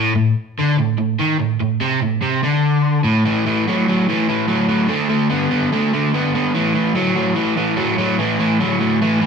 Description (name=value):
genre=rock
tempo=146 BPM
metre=4/4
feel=straight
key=A minor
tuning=A4 = 440 Hz
part: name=crunchy overdriven guitar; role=solo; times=0.0-9.3 s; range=A2 to B3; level=-15 LUFS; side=equal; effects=none
room=wet stone room reverb, RT60 1.0 s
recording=band playing live in one room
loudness=-15 LUFS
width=side -6 dB against mid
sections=0.0-3.2 A section; 3.2-9.3 B section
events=none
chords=0.0 Am; 3.2 A5; 4.9 D5; 6.5 A5